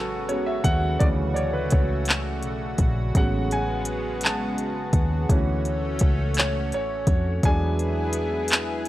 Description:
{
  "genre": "slow six-eight R&B",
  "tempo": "56 BPM (dotted quarters)",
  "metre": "6/8",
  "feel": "straight",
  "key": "A major",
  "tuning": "A4 = 441 Hz",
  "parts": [
    { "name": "clear concert grand piano", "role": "accompaniment", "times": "0.0-8.9 s", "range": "C#3 to A5", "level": "-28 LUFS", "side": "right 1 dB", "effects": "none" },
    { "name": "lush unison pad", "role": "sustained chords", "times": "0.0-8.9 s", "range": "C#3 to G#4", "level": "-30 LUFS", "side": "equal", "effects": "chorus" },
    { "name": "vintage muted fingered electric bass", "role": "bass", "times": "0.0-8.9 s", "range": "A1 to F2", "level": "-27 LUFS", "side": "equal", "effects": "tube saturation" },
    { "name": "smooth R&B drum kit", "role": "drums", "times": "0.3-8.9 s", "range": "handclaps, hi-hat, kick drum", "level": "-22 LUFS", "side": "equal", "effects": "none" }
  ],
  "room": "little or no reverb",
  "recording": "dry, gritty hardware recording",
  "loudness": "-21 LUFS",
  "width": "side -15 dB against mid",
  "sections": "0.0-8.9 A section",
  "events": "grand piano solo 0.0-8.9",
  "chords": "0.0 Amaj13; 1.0 Dmaj7; 3.1 Amaj13; 5.3 Dmaj7; 7.4 E7",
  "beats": "| 1.01 2.08 | 3.15 4.22 | 5.29 6.37 | 7.44 8.51"
}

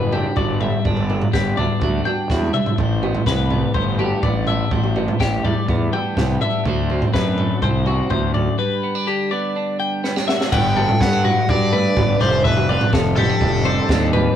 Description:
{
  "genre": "math rock and midwest emo",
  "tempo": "124 BPM",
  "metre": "4/4",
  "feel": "straight",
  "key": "G major",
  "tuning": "A4 = 442 Hz",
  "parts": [
    { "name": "twelve-string electric guitar", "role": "accompaniment", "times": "0.0-14.4 s", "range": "D2 to F#4", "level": "-25 LUFS", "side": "right 5 dB", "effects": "none" },
    { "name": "twelve-string electric guitar", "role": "arpeggios", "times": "0.0-14.4 s", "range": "F#4 to G5", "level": "-24 LUFS", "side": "left 6 dB", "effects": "none" },
    { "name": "fuzz fingered electric bass", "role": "bass", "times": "0.0-14.3 s", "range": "F1 to G2", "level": "-22 LUFS", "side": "equal", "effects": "overdrive" },
    { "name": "compact cocktail drum kit", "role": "drums", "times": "0.1-14.2 s", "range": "crash cymbal, kick drum, snare drum, toms", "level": "-20 LUFS", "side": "left 1 dB", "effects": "none" },
    { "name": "cranked stack guitar", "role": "melody", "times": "10.5-14.1 s", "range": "A4 to G5", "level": "-21 LUFS", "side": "right 1 dB", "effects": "overdrive" }
  ],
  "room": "light reverb",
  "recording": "rough rehearsal-room recording",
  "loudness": "-16 LUFS",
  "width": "side -9 dB against mid",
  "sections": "0.0-10.5 A section; 10.5-14.4 B section",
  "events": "drum fill 2.3-2.8, 10.0-10.5; break 8.6-10.5",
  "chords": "0.0 Gmaj7; 2.8 Am11; 6.6 D9; 8.6 G; 10.5 Gmaj9; 12.2 F69",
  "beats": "0.36 | 0.85 1.33 1.81 2.29 | 2.78 3.26 3.74 4.23 | 4.71 5.20 5.68 6.16 | 6.65 7.13 7.62 8.10 | 8.59 9.07 9.55 10.04 | 10.52 11.00 11.48 11.96 | 12.45 12.93 13.41 13.89"
}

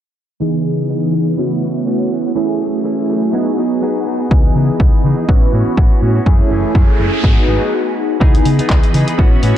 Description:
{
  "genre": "filtered disco house",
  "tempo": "123 BPM",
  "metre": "4/4",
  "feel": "swing 56% on 16ths",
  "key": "C# minor",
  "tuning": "A4 = 440 Hz",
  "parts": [
    { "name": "funky polysynth comp", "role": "accompaniment", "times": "0.4-9.6 s", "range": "E3 to G#4", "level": "-18 LUFS", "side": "right 1 dB", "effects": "chorus, phaser, sidechain pumping, low-pass filter" },
    { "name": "phased string machine", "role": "sustained chords", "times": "0.4-9.6 s", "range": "C#3 to B5", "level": "-22 LUFS", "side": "left 1 dB", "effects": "ensemble chorus, phaser, sidechain pumping, low-pass filter" },
    { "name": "direct-recorded clean electric guitar", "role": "riff", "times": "0.4-9.6 s", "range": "E3 to G#4", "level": "-25 LUFS", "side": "equal", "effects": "vintage 12-bit sampler grit, sidechain pumping, low-pass filter" },
    { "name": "hollow-body short-scale fingered electric bass", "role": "bass", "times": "4.3-9.5 s", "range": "F#1 to C#3", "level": "-16 LUFS", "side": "equal", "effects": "sidechain pumping, low-pass filter" },
    { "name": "electronic kick drum", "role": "drums", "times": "4.3-9.3 s", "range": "none", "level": "-12 LUFS", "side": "equal", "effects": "none" },
    { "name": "noise sweep", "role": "sound effects", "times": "6.6-8.2 s", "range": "none", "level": "-26 LUFS", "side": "right 1 dB", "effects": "none" },
    { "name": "punchy analog drum machine", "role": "drums", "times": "8.3-9.5 s", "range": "handclaps, hi-hat", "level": "-24 LUFS", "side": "equal", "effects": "none" }
  ],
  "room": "light reverb, digital ambience",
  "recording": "dark, warm production",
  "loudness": "-12 LUFS",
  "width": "side -11 dB against mid",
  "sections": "0.4-8.2 A section; 8.2-9.6 B section",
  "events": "filter sweep 0.4-8.2, 8.2-9.6; noise sweep 6.6-8.2; break 7.7-8.2",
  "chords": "0.4 C#m9; 1.4 A69; 2.4 F#m9; 3.3 G#m7; 4.3 C#m9; 5.3 A69; 6.3 F#m9; 7.2 G#m7; 8.2 C#m9",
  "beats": "| 0.41 0.90 1.38 1.87 | 2.36 2.85 3.33 3.82 | 4.31 4.80 5.29 5.77 | 6.26 6.75 7.24 7.73 | 8.21 8.70 9.19"
}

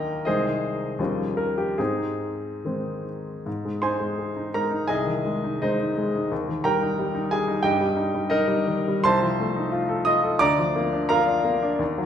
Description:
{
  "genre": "classical, romantic character piece for solo piano",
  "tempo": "69-92 BPM",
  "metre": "2/4",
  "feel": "rubato",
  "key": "Ab major, Bb major from 9.1 s",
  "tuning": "A4 = 440 Hz",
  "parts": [
    { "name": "clear baby grand piano", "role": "solo", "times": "0.0-12.1 s", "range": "C2 to Eb6", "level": "-22 LUFS", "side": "equal", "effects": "none" }
  ],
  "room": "wet recital hall reverb, RT60 1.6 s",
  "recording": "heard from further back in the room",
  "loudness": "-22 LUFS",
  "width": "side -9 dB against mid",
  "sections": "0.0-3.5 A section; 3.5-12.1 B section",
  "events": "none",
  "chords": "0.3 Ab/C; 1.0 Eb13; 1.8 Ab; 4.9 Ab/C; 6.3 Eb; 7.6 Eb/G; 9.1 F7/C; 10.4 Bb/D",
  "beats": "| 0.26 0.99 | 1.79 2.64 | 3.46 4.18 | 4.88 5.61 | 6.31 6.97 | 7.64 8.32 | 9.06 9.73 | 10.41 11.11 | 11.80"
}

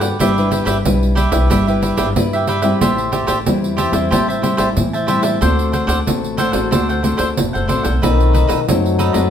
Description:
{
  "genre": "samba and choro",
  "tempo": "92 BPM",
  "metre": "4/4",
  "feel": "straight",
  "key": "unclear",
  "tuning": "A4 = 440 Hz",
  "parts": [
    { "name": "cavaquinho", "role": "accompaniment", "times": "0.0-9.3 s", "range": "D4 to A5", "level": "-19 LUFS", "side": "right 2 dB", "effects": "none" },
    { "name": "nylon-string guitar", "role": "accompaniment", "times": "0.0-9.3 s", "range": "A2 to B4", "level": "-20 LUFS", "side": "left 2 dB", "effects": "none" },
    { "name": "upright bass", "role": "bass", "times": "0.0-9.3 s", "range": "E1 to A2", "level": "-20 LUFS", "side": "equal", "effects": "none" },
    { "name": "pandeiro", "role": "percussion", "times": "0.0-9.3 s", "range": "none", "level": "-20 LUFS", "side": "right 3 dB", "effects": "none" },
    { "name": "breathy trombone", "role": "second line", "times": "8.0-9.3 s", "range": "D#3 to F#3", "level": "-18 LUFS", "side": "left 6 dB", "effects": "none" }
  ],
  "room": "wet studio reverb, RT60 0.9 s",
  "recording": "band playing live in one room",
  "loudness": "-14 LUFS",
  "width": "side -9 dB against mid",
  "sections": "0.0-9.3 A section",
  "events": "none",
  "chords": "0.2 Em7/G; 2.8 Am7; 5.4 D7; 8.0 B7b9",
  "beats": "| 0.20 0.85 1.51 2.16 | 2.81 3.46 4.11 4.77 | 5.42 6.07 6.72 7.38 | 8.03 8.68"
}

